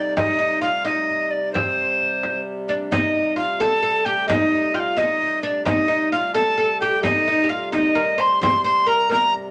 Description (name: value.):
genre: medieval dance.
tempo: 87 BPM (dotted quarters).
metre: 6/8.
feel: straight.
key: C dorian.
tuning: A4 = 440 Hz.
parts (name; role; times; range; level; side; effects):
breathy bright tenor recorder; melody; 0.0-9.3 s; C5 to C6; -22 LUFS; equal; none.
oud; second line; 0.0-9.3 s; C4 to C5; -26 LUFS; equal; none.
hand-pumped harmonium; drone; 0.0-9.5 s; C3 to G3; -34 LUFS; equal; none.
frame drum; percussion; 0.2-9.5 s; none; -30 LUFS; equal; none.
riq; percussion; 2.9-9.3 s; none; -33 LUFS; equal; none.
room: wet studio reverb, RT60 0.6 s.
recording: none.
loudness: -20 LUFS.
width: mono.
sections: 0.0-2.9 A section; 2.9-9.5 A section.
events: none.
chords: none.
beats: | 0.17 0.85 | 1.54 2.23 | 2.92 3.60 | 4.29 4.98 | 5.67 6.35 | 7.04 7.73 | 8.41 9.10.